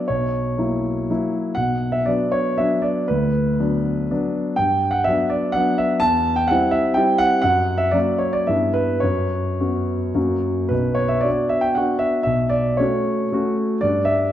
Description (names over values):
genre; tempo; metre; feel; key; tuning
classical, romantic triple-time dance for piano with dotted rhythms; 100-134 BPM; 3/4; rubato; B minor; A4 = 439 Hz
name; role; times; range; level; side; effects
warm concert grand piano; solo; 0.0-14.3 s; B1 to A5; -18 LUFS; equal; none
room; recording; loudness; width
wet recital hall reverb, RT60 1.6 s; dark, warm production; -18 LUFS; side -11 dB against mid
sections
0.0-10.7 A section; 10.7-14.3 B section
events
none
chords
0.1 F#7/B; 1.6 Bm; 3.1 Bm/D; 4.6 Gmaj7; 6.0 C/E; 7.5 F#; 8.5 Em/G; 9.0 F#sus4; 10.2 F#; 10.7 Bm; 12.3 F#m/B; 13.8 G5